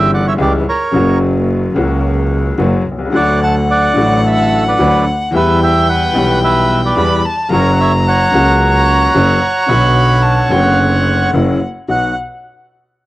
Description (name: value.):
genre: tango.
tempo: 110 BPM.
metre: 4/4.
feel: rubato.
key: B minor.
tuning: A4 = 440 Hz.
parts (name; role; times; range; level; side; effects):
bandoneon; melody; 0.0-12.2 s; G4 to A5; -14 LUFS; right 2 dB; cassette tape.
clear upright piano; accompaniment; 0.0-12.1 s; F#1 to G4; -16 LUFS; left 2 dB; cassette tape.
clear double bass; bass; 0.0-12.1 s; F#1 to E2; -16 LUFS; right 1 dB; tube saturation.
rich violin; second line; 3.1-12.1 s; E#5 to B5; -18 LUFS; left 2 dB; cassette tape.
room: light reverb, small room ambience.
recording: home recording on cassette.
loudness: -10 LUFS.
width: side -16 dB against mid.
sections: 0.0-11.9 A section; 11.9-13.1 B section.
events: none.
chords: 0.0 C#dim; 0.9 F#; 3.1 D; 5.3 Em; 7.5 F#; 9.7 Bm; 11.3 F#7; 11.9 B.